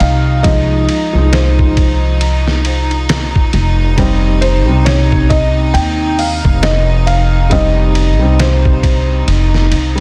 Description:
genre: trip hop.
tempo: 68 BPM.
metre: 4/4.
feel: swing 59% on 16ths.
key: F minor.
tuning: A4 = 440 Hz.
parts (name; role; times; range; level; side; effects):
felt-muted upright piano; melody; 0.0-9.2 s; C5 to G5; -22 LUFS; equal; dub echo.
warm upright piano; accompaniment; 0.0-10.0 s; C3 to Eb4; -22 LUFS; equal; tremolo, tape echo.
clear studio violin section; sustained chords; 0.0-10.0 s; Eb4; -24 LUFS; equal; none.
upright bass; bass; 0.0-10.0 s; F1 to Eb2; -15 LUFS; equal; none.
trip hop sampler-style drum kit; drums; 0.0-10.0 s; hi-hat, kick drum, ride cymbal, snare drum; -19 LUFS; equal; small room ambience.
room: studio reverb.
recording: dense, heavily limited modern master.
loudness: -12 LUFS.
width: mono.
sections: 0.0-10.0 A section.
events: none.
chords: 0.0 Fm7; 4.0 Cm/F.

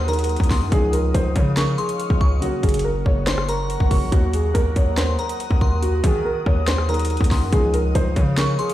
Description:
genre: hip hop, trap.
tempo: 141 BPM.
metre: 4/4.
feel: half-time.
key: Eb dorian.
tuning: A4 = 443 Hz.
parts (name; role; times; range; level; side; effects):
dark concert grand piano; melody; 0.0-8.7 s; Gb4 to Db5; -25 LUFS; right 1 dB; low-pass filter.
glassy synth bell; second line; 0.0-8.7 s; Bb5 to Db6; -30 LUFS; left 3 dB; chorus, ping-pong delay.
dark grand piano; accompaniment; 0.0-8.7 s; Db3 to Ab4; -29 LUFS; left 1 dB; low-pass filter.
glassy FM pad; sustained chords; 0.0-8.7 s; Bb4 to Eb6; -31 LUFS; equal; ensemble chorus, built-in reverb.
distorted 808-style bass; bass; 0.0-8.6 s; Gb1 to Eb3; -22 LUFS; equal; distortion.
trap drum kit; drums; 0.1-8.7 s; hi-hat, kick drum, rim click, snare drum; -20 LUFS; equal; none.
room: little or no reverb.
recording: played on a big sound system in a bare room, stone room reverb.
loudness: -17 LUFS.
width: side -13 dB against mid.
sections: 0.0-8.7 A section.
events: none.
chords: 0.0 Ebm; 0.7 Dbadd9; 2.4 Gb; 4.1 Ebm; 7.5 Dbadd9.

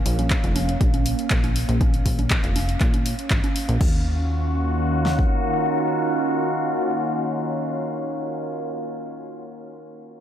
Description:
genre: progressive house.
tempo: 120 BPM.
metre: 4/4.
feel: straight.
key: Eb minor.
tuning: A4 = 440 Hz.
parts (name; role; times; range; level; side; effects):
evolving wavetable pad; sustained chords; 0.0-8.6 s; Eb3 to F5; -24 LUFS; equal; phaser, built-in reverb, sidechain pumping.
plucky analog bass; bass; 0.1-5.3 s; F1 to Bb2; -24 LUFS; equal; sidechain pumping.
house drum kit; drums; 0.1-3.9 s; crash cymbal, handclaps, hi-hat; -29 LUFS; left 1 dB; none.
congas; percussion; 0.2-3.5 s; none; -34 LUFS; right 3 dB; sidechain pumping on perc.
deep house drum kit; drums; 0.3-5.3 s; kick drum, snare drum; -22 LUFS; equal; overdrive.
room: moderate cathedral reverb, RT60 5.5 s.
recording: dreamy mix soaked in reverb.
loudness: -20 LUFS.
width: side -10 dB against mid.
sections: 0.0-3.8 A section; 3.8-7.8 B section.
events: filter sweep on ambient pad 0.0-3.8.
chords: 0.0 Bbm; 3.8 Ebm7.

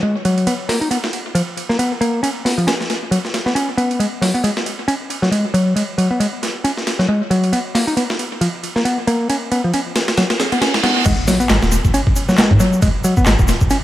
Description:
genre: breakbeat, breaks.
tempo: 136 BPM.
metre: 4/4.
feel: swing 57% on 16ths.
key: G# dorian.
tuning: A4 = 440 Hz.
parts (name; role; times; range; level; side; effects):
picked electric bass; riff; 0.0-13.8 s; E#3 to D#4; -17 LUFS; equal; vintage 12-bit sampler grit, low-pass filter, tape echo.
downlifter, reverse cymbal and impact; sound effects; 0.1-0.5, 10.4-12.8 s; none; -23 LUFS; right 2 dB; none.
breakbeat sampler-style drum kit; drums; 0.2-13.8 s; crash cymbal, hi-hat, kick drum, ride cymbal, snare drum; -19 LUFS; equal; overdrive, high-pass filter on kick, high-pass filter on cymbals, high-pass filter on snare, high-pass filter on hats, high-pass filter on room, tape echo.
saturated sub bass; bass; 11.1-13.7 s; D#1 to G#2; -17 LUFS; equal; tube saturation.
electronic shaker and handclaps; drums; 11.1-13.8 s; none; -24 LUFS; left 1 dB; low-pass filter on perc, low-pass filter on snare, tape echo.
room: moderate spring reverb, RT60 2.3 s.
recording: echo-heavy mix, vinyl crackle.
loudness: -15 LUFS.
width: side -14 dB against mid.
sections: 0.0-11.1 A section; 11.1-13.8 B section.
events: reverse cymbal 10.4-11.1; drop 11.1-13.8; impact 11.1-12.8.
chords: 0.5 Bmaj7(no3); 2.2 C#7(no3); 4.0 G#7(no3); 7.5 Bmaj7(no3); 9.3 C#7(no3); 11.1 G#7(no3).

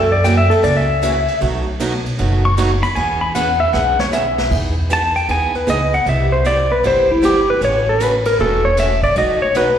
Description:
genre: country, western swing.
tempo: 155 BPM.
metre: 4/4.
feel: swing 66% on 8ths.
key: unclear.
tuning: A4 = 440 Hz.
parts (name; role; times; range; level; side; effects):
pedal steel guitar; second line; 0.0-4.5 s; A4 to C#6; -16 LUFS; left 1 dB; slapback echo.
picked swing-style acoustic guitar; accompaniment; 0.0-9.7 s; B2 to G#4; -22 LUFS; right 4 dB; slapback echo.
upright bass; bass; 0.0-9.8 s; E1 to F#2; -19 LUFS; equal; none.
vintage brush drum kit; drums; 0.2-9.7 s; crash cymbal, hi-hat, kick drum, ride cymbal, snare drum; -27 LUFS; right 1 dB; none.
clean lap steel guitar; melody; 4.9-9.8 s; E4 to A5; -14 LUFS; left 1 dB; slapback echo.
room: moderate club reverb, RT60 0.6 s.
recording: live gig heard through the venue's PA, recital hall reverb.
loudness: -13 LUFS.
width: side -9 dB against mid.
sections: 0.0-4.5 A section; 4.5-9.8 A section.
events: pedal steel guitar solo 0.0-4.5; drum fill 3.7-4.5; electric slide guitar solo 4.5-9.8.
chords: 0.0 F#7; 1.4 B7; 3.0 E6; 4.5 Emaj7; 6.1 Cmaj7; 7.6 A6; 9.2 B7.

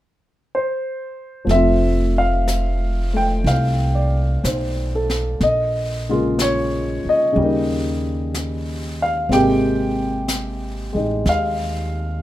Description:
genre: jazz ballad.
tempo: 62 BPM.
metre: 4/4.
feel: swing 69% on 8ths.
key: unclear.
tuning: A4 = 440 Hz.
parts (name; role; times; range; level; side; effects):
warm baby grand piano; accompaniment; 0.5-12.2 s; C3 to G5; -20 LUFS; left 1 dB; none.
upright bass; bass; 1.5-12.2 s; F1 to Eb2; -22 LUFS; equal; none.
jazz brush drum kit; drums; 1.5-12.2 s; brushed snare drum, hi-hat, snare drum; -30 LUFS; left 1 dB; none.
room: moderate studio reverb, RT60 0.5 s.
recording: rough home demo mix.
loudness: -17 LUFS.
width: side -14 dB against mid.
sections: 0.0-1.5 A section; 1.5-12.2 B section.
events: none.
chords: 0.0 N.C.; 1.5 F; 5.4 Bbm7; 7.4 Eb7; 9.3 Abmaj9.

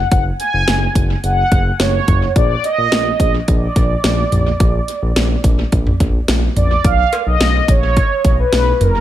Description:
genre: synth-pop.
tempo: 107 BPM.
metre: 4/4.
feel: straight.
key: unclear.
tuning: A4 = 439 Hz.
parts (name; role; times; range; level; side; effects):
mellow synth brass; melody; 0.0-9.0 s; Bb4 to Ab5; -18 LUFS; right 1 dB; chorus, dub echo.
smooth synth bass; bass; 0.0-9.0 s; Gb1 to B1; -17 LUFS; equal; none.
house drum kit; drums; 0.1-8.9 s; cowbell, hi-hat, kick drum, snare drum, toms; -16 LUFS; equal; dub echo.
room: light reverb, digital ambience.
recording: echo-heavy mix.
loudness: -12 LUFS.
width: side -12 dB against mid.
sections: 0.0-6.8 A section; 6.8-9.0 B section.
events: none.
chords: 0.0 Gb5; 2.4 Bb; 6.8 B5.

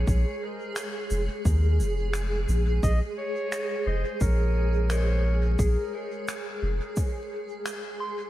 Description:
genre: ambient dub.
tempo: 87 BPM.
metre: 4/4.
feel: swing 58% on 16ths.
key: Bb minor.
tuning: A4 = 438 Hz.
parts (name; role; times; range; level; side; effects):
granular cloud pad; sustained chords; 0.0-8.3 s; Ab4; -33 LUFS; right 1 dB; built-in reverb.
soft dub sub bass; bass; 0.0-6.8 s; F1 to Eb2; -24 LUFS; equal; none.
electronic kick drum; drums; 0.1-7.1 s; none; -26 LUFS; equal; overdrive.
shaker and finger snaps; drums; 0.1-7.8 s; none; -38 LUFS; left 1 dB; dub echo.
warm clarinet; melody; 2.8-5.4 s; Bb4 to Eb5; -36 LUFS; equal; tape echo.
soft synth bell; arpeggios; 4.9-8.3 s; Ab4 to C6; -36 LUFS; left 2 dB; chorus, tape echo.
room: little or no reverb.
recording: vinyl crackle.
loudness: -24 LUFS.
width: side -14 dB against mid.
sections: 0.0-8.3 A section.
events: none.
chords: 0.0 Bb7(no3).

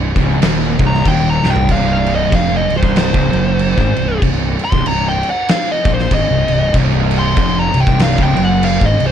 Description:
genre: stoner and doom metal.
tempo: 95 BPM.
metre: 4/4.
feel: swing 59% on 8ths.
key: C minor.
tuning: A4 = 437 Hz.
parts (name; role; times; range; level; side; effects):
fuzz guitar; riff; 0.0-9.1 s; C2 to Bb2; -16 LUFS; equal; distortion.
fuzz fingered electric bass; bass; 0.0-9.1 s; C1 to Bb1; -19 LUFS; equal; overdrive.
oversized low-tuned drum kit; drums; 0.2-9.1 s; crash cymbal, kick drum, snare drum, toms; -17 LUFS; equal; none.
fuzz lead guitar; melody; 0.9-9.1 s; C5 to C6; -18 LUFS; left 1 dB; distortion, ping-pong delay.
room: little or no reverb.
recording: dark, warm production.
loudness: -12 LUFS.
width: side -9 dB against mid.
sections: 0.0-9.1 A section.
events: lead electric guitar solo 0.0-9.1; drum fill 1.4-1.7.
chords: 0.0 Cm.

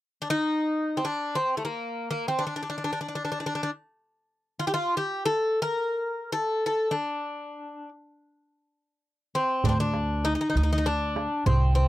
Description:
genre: Turkish makam ensemble.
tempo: free time.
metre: none.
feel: none.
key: D makam kurdi.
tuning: A4 = 440 Hz.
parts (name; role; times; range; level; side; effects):
Greek bouzouki; melody; 0.2-11.9 s; A3 to Bb4; -26 LUFS; left 1 dB; none.
upright bass; bass; 9.6-11.9 s; C2 to D2; -24 LUFS; equal; none.
darbuka; percussion; 9.6-11.9 s; none; -28 LUFS; right 3 dB; none.
room: little or no reverb.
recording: dry, close 1970s-style studio recording.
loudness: -25 LUFS.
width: side -15 dB against mid.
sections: 0.0-9.6 A section; 9.6-11.9 B section.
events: none.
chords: none.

